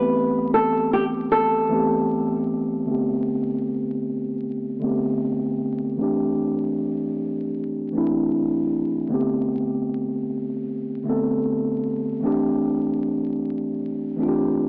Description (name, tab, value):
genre	hip hop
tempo	77 BPM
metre	4/4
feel	swing 64% on 16ths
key	A minor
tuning	A4 = 441 Hz
part	nylon-string guitar	melody	0.0-2.4 s	G4 to B4	-23 LUFS	equal	low-pass filter, cassette tape
part	mellow tine electric piano	accompaniment	0.0-14.7 s	D3 to A4	-24 LUFS	equal	low-pass filter, cassette tape
room	moderate spring reverb, RT60 2.6 s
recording	home recording on cassette, vinyl crackle, AM radio sound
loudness	-24 LUFS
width	mono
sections	0.0-2.9 A section; 2.9-14.7 B section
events	filter sweep on tine electric piano 2.9-14.7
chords	0.0 Am9; 2.9 Am11; 6.0 D9sus4; 9.1 Am11; 12.2 D9sus4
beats	0.53 1.31 2.09 | 2.87 3.65 4.43 5.21 | 5.99 6.76 7.54 8.32 | 9.10 9.88 10.66 11.44 | 12.22 13.00 13.78 14.56